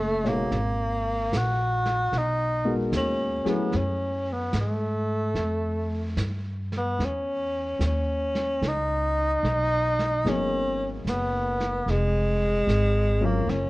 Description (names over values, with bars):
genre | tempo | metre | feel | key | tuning
jazz | 74 BPM | 4/4 | swing 66% on 8ths | unclear | A4 = 435 Hz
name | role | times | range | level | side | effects
breathy tenor saxophone | melody | 0.0-13.7 s | Ab3 to Gb4 | -26 LUFS | equal | none
upright bass | bass | 0.0-13.7 s | F1 to Ab2 | -28 LUFS | equal | none
warm baby grand piano | accompaniment | 0.2-3.8, 10.3-13.5 s | Cb3 to C#5 | -29 LUFS | left 2 dB | none
vintage brush drum kit | drums | 0.3-13.7 s | brushed snare drum, hi-hat, snare drum | -35 LUFS | right 2 dB | none
room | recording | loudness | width
moderate large studio reverb, RT60 1.4 s | worn, warbling old tape, cassette tape, warbly pitch drift | -23 LUFS | side -20 dB against mid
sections
0.0-13.7 A section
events
none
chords
0.0 A; 0.5 Abm9; 3.7 Gbmadd9; 5.4 Fadd9; 7.0 E5; 10.3 Abm9; 11.9 Db